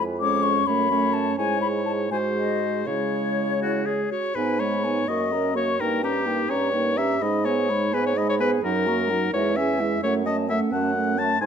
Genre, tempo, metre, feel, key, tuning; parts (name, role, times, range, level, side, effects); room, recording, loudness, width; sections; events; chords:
quick classical-period movement for wind quintet; 80-88 BPM (dotted quarters); 6/8; rubato; C# minor, G# minor from 4.4 s; A4 = 440 Hz
mellow silver concert flute; melody; 0.0-11.5 s; C#5 to D6; -28 LUFS; left 9 dB
mellow bassoon; bass; 0.0-11.5 s; E2 to C#3; -28 LUFS; right 4 dB
clear oboe; second line; 0.2-11.5 s; F#4 to A5; -26 LUFS; left 3 dB
mellow French horn; accompaniment; 0.2-11.5 s; F#3 to C#4; -28 LUFS; equal
warm clarinet; accompaniment; 0.2-11.5 s; A3 to A#4; -29 LUFS; right 11 dB
moderate recital hall reverb, RT60 1.4 s; -21 LUFS; side -7 dB against mid
0.0-4.4 A section; 4.4-11.5 B section
0.0 C#/E#; 0.7 F#m; 1.4 C#m/G#; 2.1 G#7; 2.9 C#m; 4.4 G#m; 5.1 F#; 5.8 D#7/G; 7.2 G#m; 8.6 D#m/F#; 9.3 C#m/E; 10.0 F#m